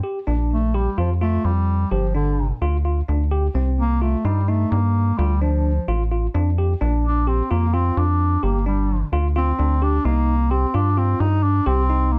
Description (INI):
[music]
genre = progressive instrumental, band music in an uneven meter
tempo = 258 BPM (eighths)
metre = 7/8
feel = straight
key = C dorian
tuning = A4 = 440 Hz
[part]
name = tine electric piano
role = arpeggios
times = 0.0-12.2 s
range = C4 to G4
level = -30 LUFS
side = equal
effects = none
[part]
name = rubbery square bass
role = bass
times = 0.3-12.2 s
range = G1 to G2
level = -22 LUFS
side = equal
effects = none
[part]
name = warm bass clarinet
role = melody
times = 0.5-12.2 s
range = D3 to Eb4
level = -26 LUFS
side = equal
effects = none
[sound]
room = light reverb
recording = none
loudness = -20 LUFS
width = mono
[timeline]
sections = 0.3-12.2 A section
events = bass clarinet solo 0.3-12.2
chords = 0.3 Bb; 1.9 G5; 3.5 Cm7; 5.2 Dm; 6.8 Bb; 8.4 G5; 10.1 Cm7